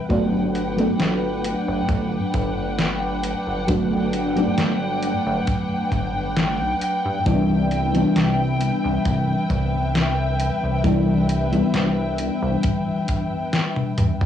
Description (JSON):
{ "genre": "vaporwave", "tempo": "67 BPM", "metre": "4/4", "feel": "straight", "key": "G major", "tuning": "A4 = 440 Hz", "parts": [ { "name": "mellow FM electric piano", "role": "accompaniment", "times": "0.0-14.3 s", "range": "E3 to D4", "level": "-22 LUFS", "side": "left 1 dB", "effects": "tremolo, ensemble chorus, cassette tape, tape echo" }, { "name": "dark studio string section", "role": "sustained chords", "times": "0.0-14.3 s", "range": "D4 to G5", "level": "-26 LUFS", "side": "left 1 dB", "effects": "cassette tape" }, { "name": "chorused synth bass", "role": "bass", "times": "0.1-14.3 s", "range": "G1 to G2", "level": "-26 LUFS", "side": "equal", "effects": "tube saturation" }, { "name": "detuned 8-bit digital drum machine", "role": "drums", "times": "0.1-14.3 s", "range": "hi-hat, snare drum, toms", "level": "-24 LUFS", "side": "left 1 dB", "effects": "cassette tape" }, { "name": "kick drum", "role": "drums", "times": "0.1-13.3 s", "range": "none", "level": "-26 LUFS", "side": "equal", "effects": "cassette tape" } ], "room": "light reverb", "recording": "home recording on cassette, small room ambience", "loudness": "-19 LUFS", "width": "side -10 dB against mid", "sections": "0.0-14.3 A section", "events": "kick drops out 13.5-14.3; drum fill 13.8-14.3", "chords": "0.1 Gmaj7; 7.3 Cmaj7", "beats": "| 0.10 1.00 1.89 2.79 | 3.68 4.58 5.47 6.37 | 7.26 8.16 9.06 9.95 | 10.85 11.74 12.64 13.53" }